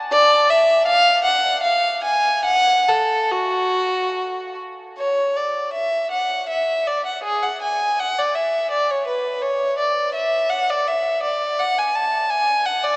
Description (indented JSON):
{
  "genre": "classical, baroque-style suite movement for unaccompanied violin",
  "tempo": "70-85 BPM",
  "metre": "3/4",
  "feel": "rubato",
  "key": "F# minor",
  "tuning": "A4 = 441 Hz",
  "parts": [
    { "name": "clear violin", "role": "solo", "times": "0.1-13.0 s", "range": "F#4 to A5", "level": "-17 LUFS", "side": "equal", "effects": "none" }
  ],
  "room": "wet cathedral reverb, RT60 6.3 s",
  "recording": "small speaker sound",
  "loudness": "-17 LUFS",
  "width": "side -27 dB against mid",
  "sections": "0.0-5.0 A section; 5.0-13.0 A section",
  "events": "none",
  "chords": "none"
}